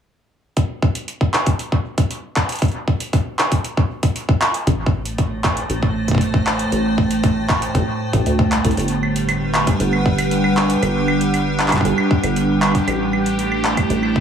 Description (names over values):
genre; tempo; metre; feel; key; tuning
IDM; 117 BPM; 4/4; straight; G major; A4 = 439 Hz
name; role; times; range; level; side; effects
electro analog drum machine; drums; 0.6-14.1 s; claves, handclaps, hi-hat; -22 LUFS; equal; overdrive, dub echo
electronic kick drum; drums; 0.6-14.2 s; none; -19 LUFS; equal; none
icy glass pad; sustained chords; 5.2-14.2 s; A2 to G5; -20 LUFS; right 1 dB; chorus, built-in reverb
deep acid bass; bass; 4.7-14.2 s; G1 to D2; -22 LUFS; equal; tube saturation
bubbling stepped-filter texture; texture; 8.9-14.2 s; G4; -27 LUFS; right 3 dB; chorus, built-in reverb
room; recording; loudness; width
moderate spring reverb, RT60 1.4 s, digital ambience; echo-heavy mix; -16 LUFS; side -8 dB against mid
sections
0.6-8.8 A section; 8.8-14.2 B section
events
drum fill 8.5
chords
0.6 N.C.; 4.7 Am7; 8.8 Gmaj7; 12.9 Am7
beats
| 0.57 1.08 1.59 2.11 | 2.62 3.13 3.65 4.16 | 4.67 5.18 5.70 6.21 | 6.72 7.24 7.75 8.26 | 8.77 9.29 9.80 10.31 | 10.82 11.34 11.85 12.36 | 12.88 13.39 13.90